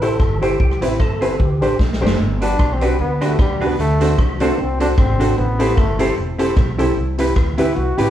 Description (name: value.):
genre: ska.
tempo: 151 BPM.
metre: 4/4.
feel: swing 55% on 8ths.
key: G major.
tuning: A4 = 441 Hz.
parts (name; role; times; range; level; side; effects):
percussive tonewheel organ; melody; 0.0-1.8 s; E4 to A4; -25 LUFS; equal; chorus vibrato, fast rotary speaker.
hollow-body jazz guitar; accompaniment; 0.0-8.1 s; C4 to C5; -22 LUFS; right 3 dB; none.
honky-tonk upright piano; stabs; 0.0-8.1 s; C4 to C5; -22 LUFS; left 2 dB; none.
upright bass; bass; 0.0-8.1 s; E1 to D2; -21 LUFS; equal; none.
swinging big-band drum kit; drums; 0.0-8.1 s; hi-hat, kick drum, rim click, snare drum; -20 LUFS; equal; none.
bright trombone; melody; 2.4-8.1 s; G3 to G4; -22 LUFS; left 1 dB; none.
room: moderate large studio reverb, RT60 0.9 s.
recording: band playing live in one room.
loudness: -15 LUFS.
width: side -11 dB against mid.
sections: 0.0-2.2 A section; 2.2-8.1 B section.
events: drum fill 1.8-2.2; trombone solo 2.2-8.1.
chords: 0.0 Am7; 0.6 Cmaj7; 1.4 D7sus4; 2.2 Gmaj7; 3.8 D7; 5.4 Am7; 7.0 Cmaj7.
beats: 0.20 | 0.60 1.00 1.40 1.80 | 2.19 2.59 2.99 3.39 | 3.79 4.18 4.58 4.98 | 5.38 5.77 6.17 6.57 | 6.97 7.36 7.76.